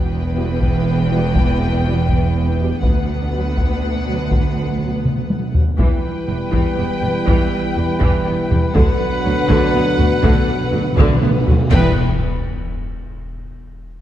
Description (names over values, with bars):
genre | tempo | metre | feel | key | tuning
cinematic, epic orchestral film score | 81 BPM (dotted quarters) | 6/8 | straight | E minor | A4 = 441 Hz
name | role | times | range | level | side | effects
warm symphonic violin section | melody | 0.0-12.0 s | F#5 to G5 | -29 LUFS | left 3 dB | none
warm symphonic violin section | second line | 0.0-12.0 s | B4 | -28 LUFS | left 4 dB | none
rich symphonic viola section | accompaniment | 0.0-12.0 s | D3 to B3 | -26 LUFS | right 1 dB | none
clear symphonic cello section | bass | 0.0-12.0 s | D2 to E2 | -23 LUFS | right 1 dB | none
dark symphonic double bass section | bass | 0.0-12.0 s | E1 to D2 | -21 LUFS | right 2 dB | none
dark French horn section | sustained chords | 0.4-11.9 s | B3 to F#4 | -28 LUFS | left 4 dB | none
dark trombone section | sustained chords | 0.4-11.9 s | B2 to G3 | -26 LUFS | right 3 dB | none
solo taiko drums | drums | 0.6-12.7 s | none | -20 LUFS | left 1 dB | none
timpani | percussion | 2.8-5.7, 8.8-11.9 s | E2 to B2 | -24 LUFS | right 1 dB | none
clear trumpet | stabs | 5.8-11.9 s | B4 | -26 LUFS | right 1 dB | none
cymbal swell, clash cymbals and concert bass drum | percussion | 8.7-12.7 s | none | -26 LUFS | left 1 dB | none
room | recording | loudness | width
moderate scoring stage reverb, RT60 2.0 s | dark, warm production | -15 LUFS | side -12 dB against mid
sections
0.0-5.8 A section; 5.8-11.7 B section; 11.7-13.2 C section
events
timpani fill 2.8-5.8, 8.8-11.7; drum fill 5.0-5.8; band accent 11.7-12.2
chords
0.0 Em; 2.8 Bm/D; 5.8 Em; 8.8 Bm/D; 11.7 Em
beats
0.60 | 1.34 2.08 | 2.82 3.56 | 4.31 5.05 | 5.79 6.53 | 7.27 8.01 | 8.75 9.49 | 10.23 10.97 | 11.71 12.45